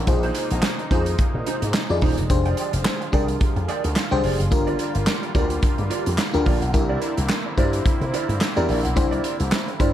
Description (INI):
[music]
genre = early-eighties boogie funk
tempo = 108 BPM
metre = 4/4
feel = swing 56% on 16ths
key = F dorian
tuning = A4 = 440 Hz
[part]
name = brassy analog pad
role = sustained chords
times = 0.0-9.9 s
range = C3 to F4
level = -31 LUFS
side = right 1 dB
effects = chorus
[part]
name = slap bass with an envelope filter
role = bass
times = 0.0-9.9 s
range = Eb1 to C3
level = -24 LUFS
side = equal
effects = none
[part]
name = FM electric piano with soft pad layer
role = accompaniment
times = 0.1-9.9 s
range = D4 to D5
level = -26 LUFS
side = left 3 dB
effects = chorus
[part]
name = mellow electric guitar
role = riff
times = 0.1-9.9 s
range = Eb4 to G5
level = -30 LUFS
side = right 6 dB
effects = ensemble chorus
[part]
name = modern studio drum kit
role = drums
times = 0.1-9.9 s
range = handclaps, hi-hat, kick drum, snare drum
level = -23 LUFS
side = equal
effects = gated reverb
[sound]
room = small room reverb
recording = none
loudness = -19 LUFS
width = side -11 dB against mid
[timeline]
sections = 0.0-9.9 A section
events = none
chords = 0.1 Bb9sus4; 2.3 Fm69; 4.5 Gm7; 6.7 C9